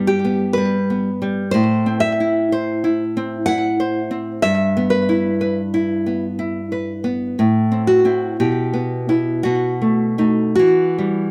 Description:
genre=romantic duo for nylon-string guitar and classical guitar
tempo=50-64 BPM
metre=3/4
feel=rubato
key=E minor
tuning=A4 = 441 Hz
part: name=nylon-string guitar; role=melody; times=0.0-11.3 s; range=F#4 to F#5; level=-22 LUFS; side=equal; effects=slapback echo, plate reverb
part: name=nylon-string guitar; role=accompaniment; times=0.0-11.3 s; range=G2 to C5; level=-20 LUFS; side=equal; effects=none
room=moderate small room reverb, RT60 0.5 s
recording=none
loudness=-19 LUFS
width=mono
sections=0.0-11.3 A section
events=none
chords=0.0 Em/G (rootless); 1.5 Am; 4.4 Em/G; 7.4 Am; 8.4 Em/B; 9.4 B7; 10.6 Em

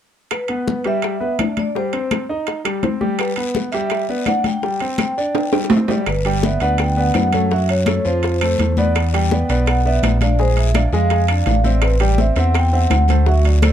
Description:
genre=Afro-Cuban jazz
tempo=167 BPM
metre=4/4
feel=straight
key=G major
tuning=A4 = 439 Hz
part: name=vibraphone with medium mallets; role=melody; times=0.3-13.7 s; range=B4 to G5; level=-22 LUFS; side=equal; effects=plate reverb
part: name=bongos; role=percussion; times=0.3-13.7 s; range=none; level=-26 LUFS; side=left 7 dB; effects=none
part: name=claves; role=percussion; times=0.3-13.7 s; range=none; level=-33 LUFS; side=left 6 dB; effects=none
part: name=congas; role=percussion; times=0.3-13.7 s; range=none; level=-24 LUFS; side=left 4 dB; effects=none
part: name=timbales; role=percussion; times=0.3-13.7 s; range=none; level=-23 LUFS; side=right 6 dB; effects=none
part: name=clear grand piano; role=accompaniment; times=0.5-13.7 s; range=F3 to Ab5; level=-22 LUFS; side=equal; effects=none
part: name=guiro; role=percussion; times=3.2-13.7 s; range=none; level=-35 LUFS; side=left 6 dB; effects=none
part: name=smooth gliding synth bass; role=bass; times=6.1-13.7 s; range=G1 to F#2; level=-16 LUFS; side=equal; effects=none
room=light reverb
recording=dark, warm production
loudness=-15 LUFS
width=side -10 dB against mid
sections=0.3-6.1 A section; 6.1-13.7 B section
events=drum fill 5.4-6.1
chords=0.3 G; 1.8 Cm/G; 3.2 G; 4.6 D7sus4; 6.1 Gmaj9; 7.5 F#m; 8.2 F; 9.0 Em7; 10.4 Bb9; 11.8 Am7

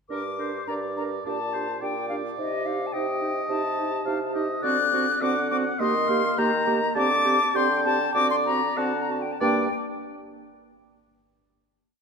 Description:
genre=quick classical-period movement for wind quintet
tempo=92-108 BPM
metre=4/4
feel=rubato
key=G minor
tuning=A4 = 440 Hz
part: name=bright concert flute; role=melody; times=0.1-9.8 s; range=Eb5 to F#6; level=-26 LUFS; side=left 5 dB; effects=none
part: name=warm oboe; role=second line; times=0.1-9.7 s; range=Bb4 to A5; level=-30 LUFS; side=equal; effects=none
part: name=clear clarinet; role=accompaniment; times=0.1-9.7 s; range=D4 to Bb4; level=-32 LUFS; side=right 7 dB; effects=none
part: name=mellow French horn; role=accompaniment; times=0.1-9.7 s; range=Bb3 to Eb4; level=-32 LUFS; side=right 1 dB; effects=none
part: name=mellow bassoon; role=bass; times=0.1-9.7 s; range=G2 to Eb3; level=-30 LUFS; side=right 3 dB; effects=none
room=wet concert hall reverb, RT60 2.2 s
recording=minimal, uncompressed stereo recording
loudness=-22 LUFS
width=side -5 dB against mid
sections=0.1-9.4 A section; 9.4-11.9 final chord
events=slowing down 3.5-9.4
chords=0.1 Gm; 1.3 Gm/Bb; 2.4 Am7b5/C; 4.6 D7; 5.8 Eb; 7.0 D7sus4; 8.2 D7; 9.4 Gm

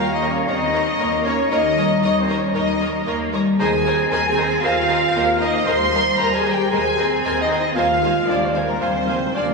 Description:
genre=cinematic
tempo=115 BPM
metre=4/4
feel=straight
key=Eb major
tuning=A4 = 440 Hz
part: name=rich symphonic violin section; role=melody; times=0.0-9.5 s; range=Bb4 to C6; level=-25 LUFS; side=left 2 dB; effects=none
part: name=clear clarinet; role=second line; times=0.0-9.5 s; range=C5 to F5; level=-29 LUFS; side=equal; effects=none
part: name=clear oboe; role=second line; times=0.0-9.5 s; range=Ab5 to Bb5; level=-31 LUFS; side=equal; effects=none
part: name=mellow concert flute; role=second line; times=0.0-9.4 s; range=Bb4 to C6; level=-28 LUFS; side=equal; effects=none
part: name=warm chamber violin section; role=second line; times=0.0-9.4 s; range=Eb5 to Bb5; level=-33 LUFS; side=left 2 dB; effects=none
part: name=warm symphonic viola section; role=accompaniment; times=0.0-9.4 s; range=Bb4 to Db5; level=-29 LUFS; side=right 1 dB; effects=none
part: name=dark French horn section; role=sustained chords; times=0.0-9.5 s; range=Bb3 to C5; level=-22 LUFS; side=left 1 dB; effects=none
part: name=mellow trumpet section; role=stabs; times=0.0-9.5 s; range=Bb4 to C6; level=-25 LUFS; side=left 1 dB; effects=none
part: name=rich symphonic cello section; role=bass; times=0.0-9.5 s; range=F3 to C4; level=-25 LUFS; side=equal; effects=none
part: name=warm studio double bass section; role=bass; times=0.0-9.5 s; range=Eb2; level=-28 LUFS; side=right 5 dB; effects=none
part: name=timpani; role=percussion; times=3.6-4.3, 7.8-9.5 s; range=Eb3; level=-32 LUFS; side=equal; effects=none
room=wet church reverb, RT60 3.4 s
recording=recorded in a church or concert hall, small room ambience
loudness=-16 LUFS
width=side -3 dB against mid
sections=0.0-9.5 A section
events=timpani fill 7.8-9.5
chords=0.0 Eb7; 3.6 Abadd9/Eb; 7.8 Fm/Eb

